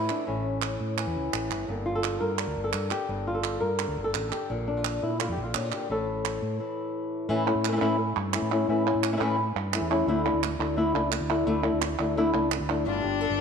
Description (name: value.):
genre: flamenco.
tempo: 172 BPM.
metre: 4/4.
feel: straight.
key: A phrygian dominant.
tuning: A4 = 439 Hz.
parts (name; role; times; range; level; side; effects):
flamenco guitar; melody; 0.0-13.4 s; G2 to Bb4; -27 LUFS; left 2 dB; none.
fingered electric bass; bass; 0.0-13.4 s; G1 to Bb2; -32 LUFS; right 1 dB; none.
palmas hand claps; percussion; 0.1-12.9 s; none; -33 LUFS; right 11 dB; none.
warm violin; second line; 12.9-13.4 s; D4; -27 LUFS; left 9 dB; none.
room: wet echo chamber reverb, RT60 2.0 s.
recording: 1960s-style stereo with parts hard left and right.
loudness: -25 LUFS.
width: side -6 dB against mid.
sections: 0.0-7.3 A section; 7.3-12.9 B section.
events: break 6.6-7.3.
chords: 0.0 A; 1.7 Gm; 4.5 Bb; 5.9 A5; 7.3 A; 10.1 Dsus2; 12.9 G5.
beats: | 0.27 0.63 0.98 1.33 | 1.68 2.03 2.39 2.74 | 3.09 3.44 3.79 4.14 | 4.49 4.84 5.20 5.54 | 5.89 6.25 6.59 6.94 | 7.29 7.64 7.99 8.34 | 8.69 9.03 9.38 9.73 | 10.08 10.42 10.77 11.12 | 11.47 11.81 12.16 12.51 | 12.86 13.21.